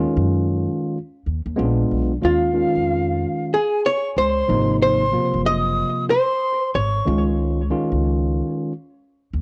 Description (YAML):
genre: hip hop, jazz-hop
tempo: 93 BPM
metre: 4/4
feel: swing 61% on 16ths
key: Eb minor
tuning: A4 = 443 Hz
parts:
  - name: bright tine electric piano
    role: accompaniment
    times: 0.0-8.7 s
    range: Bb2 to F4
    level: -24 LUFS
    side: equal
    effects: cassette tape
  - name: upright bass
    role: bass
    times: 0.0-9.4 s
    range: Gb1 to Gb2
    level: -25 LUFS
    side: equal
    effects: tube saturation
  - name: archtop guitar, miked and amplified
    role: melody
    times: 2.2-7.2 s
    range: F4 to Eb5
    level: -23 LUFS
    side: equal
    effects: cassette tape, analog delay
  - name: jazz flute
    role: second line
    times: 2.2-7.2 s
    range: F5 to Eb6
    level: -29 LUFS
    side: equal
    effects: cassette tape, analog delay
room: light reverb, small room ambience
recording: home recording on cassette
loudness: -20 LUFS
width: mono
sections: 0.0-9.4 A section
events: none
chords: 0.0 Ebm11; 1.6 Bb7b9; 2.2 Eb9sus4; 4.5 Ab7; 7.1 Dbadd9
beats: 0.29 0.93 1.58 | 2.22 2.87 3.51 4.16 | 4.80 5.45 6.09 6.74 | 7.38 8.03 8.67 9.32